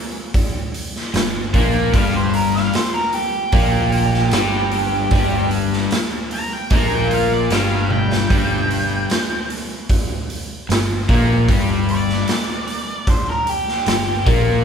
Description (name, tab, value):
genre	blues rock power trio and southern rock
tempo	75 BPM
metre	4/4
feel	straight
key	G minor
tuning	A4 = 439 Hz
part	raw garage drum kit	drums	0.3-14.5 s	hi-hat, kick drum, snare drum, toms	-20 LUFS	right 1 dB	none
part	crunchy overdriven guitar	riff	1.1-14.6 s	G2 to Bb3	-19 LUFS	left 2 dB	none
part	fuzz picked electric bass	bass	1.1-14.6 s	G1 to Bb1	-23 LUFS	equal	overdrive
part	octave-fuzz lead guitar	melody	2.0-14.3 s	G4 to Bb5	-23 LUFS	right 1 dB	distortion
room	light reverb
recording	band playing live in one room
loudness	-16 LUFS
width	side -7 dB against mid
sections	0.0-14.6 A section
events	drum fill 7.9-8.3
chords	0.0 Gm